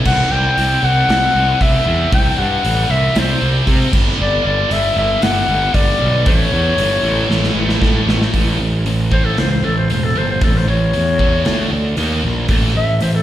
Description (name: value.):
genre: hard rock.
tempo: 116 BPM.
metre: 4/4.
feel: straight.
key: unclear.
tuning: A4 = 441 Hz.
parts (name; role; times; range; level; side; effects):
heavy high-gain guitar; riff; 0.0-13.2 s; G2 to D#4; -20 LUFS; right 1 dB; distortion, slapback echo.
breathy clarinet; melody; 0.1-13.2 s; A4 to G5; -18 LUFS; left 2 dB; slapback echo.
fuzz picked electric bass; bass; 0.1-13.2 s; E1 to C3; -17 LUFS; equal; overdrive.
gated 80s drum kit; drums; 0.1-13.1 s; crash cymbal, hi-hat, kick drum, snare drum; -19 LUFS; equal; none.
room: little or no reverb.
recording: live gig heard through the venue's PA, recital hall reverb.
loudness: -13 LUFS.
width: side -12 dB against mid.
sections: 0.0-8.3 A section; 8.3-13.2 B section.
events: drum fill 7.3-8.3; clarinet solo 8.3-13.2.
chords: 0.1 C; 3.9 G5; 6.3 A; 11.5 D5; 12.0 D#5; 12.5 A5.